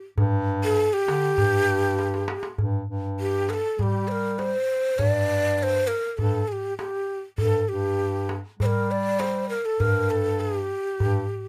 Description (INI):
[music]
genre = Arabic maqam ensemble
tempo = 100 BPM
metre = 4/4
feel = straight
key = G minor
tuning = A4 = 440 Hz
[part]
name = warm bass clarinet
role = bass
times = 0.2-11.2 s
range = G2 to G3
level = -30 LUFS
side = equal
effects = none
[part]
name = darbuka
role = percussion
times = 0.2-11.5 s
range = none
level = -30 LUFS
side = equal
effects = none
[part]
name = breathy mellow ney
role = melody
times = 0.6-11.5 s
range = G4 to D5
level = -27 LUFS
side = equal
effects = none
[sound]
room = little or no reverb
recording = close, detailed microphones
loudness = -25 LUFS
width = mono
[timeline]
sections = 0.0-2.6 A section; 2.6-11.5 B section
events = drum fill 2.0-2.6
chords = none